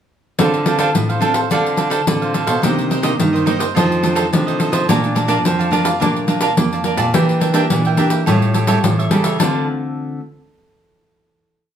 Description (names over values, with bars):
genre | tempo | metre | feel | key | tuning
samba and choro | 106 BPM | 4/4 | straight | D minor | A4 = 440 Hz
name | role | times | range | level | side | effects
cavaquinho | accompaniment | 0.4-9.6 s | D4 to A5 | -20 LUFS | right 4 dB | none
nylon-string guitar | accompaniment | 0.4-10.2 s | F2 to A4 | -20 LUFS | equal | none
nylon-string guitar | bass | 0.4-9.7 s | A2 to Bb3 | -20 LUFS | right 1 dB | none
pandeiro | percussion | 0.4-9.5 s | none | -20 LUFS | left 2 dB | none
room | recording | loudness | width
moderate studio ambience, RT60 0.5 s | studio reverb | -14 LUFS | side -9 dB against mid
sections
0.4-9.4 groove; 9.4-11.7 final chord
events
none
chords
0.4 Dm7; 2.6 Cm9; 3.8 F6; 4.9 Bbmaj7; 7.1 Em7b5; 8.3 A7b13; 9.4 Dm7